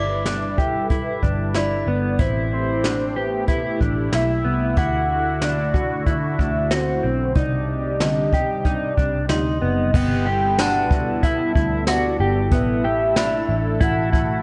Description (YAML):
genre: dream pop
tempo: 93 BPM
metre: 4/4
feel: straight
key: G major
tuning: A4 = 440 Hz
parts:
  - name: soft octave-layered synth lead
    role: melody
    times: 0.0-14.4 s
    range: B4 to G5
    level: -28 LUFS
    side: equal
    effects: chorus, phaser, tape echo
  - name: phased analog pad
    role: sustained chords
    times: 0.0-14.4 s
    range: C3 to B4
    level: -30 LUFS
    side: equal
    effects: phaser, chorus
  - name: mellow electric guitar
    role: arpeggios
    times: 0.0-14.4 s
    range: D3 to G4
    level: -26 LUFS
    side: equal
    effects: analog chorus, tape echo
  - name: vintage muted picked electric bass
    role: bass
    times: 0.0-14.4 s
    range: F#1 to D2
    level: -28 LUFS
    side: equal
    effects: none
  - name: glockenspiel with brass mallets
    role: texture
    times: 0.0-14.4 s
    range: A5 to D6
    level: -38 LUFS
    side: equal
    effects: tape echo
  - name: jazz brush drum kit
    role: drums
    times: 0.3-14.3 s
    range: crash cymbal, hi-hat, kick drum, snare drum, tambourine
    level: -25 LUFS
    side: equal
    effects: none
room: moderate scoring stage reverb, RT60 1.6 s, studio ambience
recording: nothing above 10.8 kHz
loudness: -21 LUFS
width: mono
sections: 0.0-9.9 A section; 9.9-14.4 B section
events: none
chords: 0.0 G69; 2.2 Am9; 4.8 D7; 7.4 Cmadd9; 9.9 G69